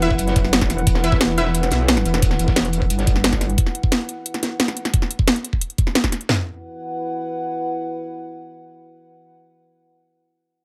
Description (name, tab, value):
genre	dark technical drum and bass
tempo	177 BPM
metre	4/4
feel	straight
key	E minor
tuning	A4 = 442 Hz
part	dark analog pad	sustained chords	0.0-9.3 s	E4 to F#5	-30 LUFS	equal	chorus, sidechain pumping
part	orchestra-hit-like synth stab	stabs	0.0-1.5 s	E4 to E5	-28 LUFS	equal	built-in reverb, dub echo
part	metallic wobble bass	bass	0.0-3.6 s	E1 to B1	-23 LUFS	equal	chorus, overdrive, sidechain pumping
part	crunchy breakbeat drum kit	drums	0.0-3.5 s	hi-hat, snare drum	-33 LUFS	equal	high-pass filter on hats, high-pass filter on snare, high-pass filter on room
part	drum and bass drum kit	drums	0.0-6.3 s	hi-hat, snare drum	-23 LUFS	equal	none
part	drum and bass drum kit	drums	0.1-6.4 s	kick drum, snare drum, toms	-22 LUFS	equal	none
room	digital ambience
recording	none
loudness	-20 LUFS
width	mono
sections	0.0-6.3 A section; 6.3-9.0 B section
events	drop 0.0-6.3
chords	0.0 E5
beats	0.19 0.53 | 0.87 1.21 1.55 1.89 | 2.22 2.56 2.90 3.24 | 3.58 3.92 4.26 4.60 | 4.94 5.28 5.61 5.95 | 6.29 6.63 6.97 7.31 | 7.65 7.99 8.33 8.66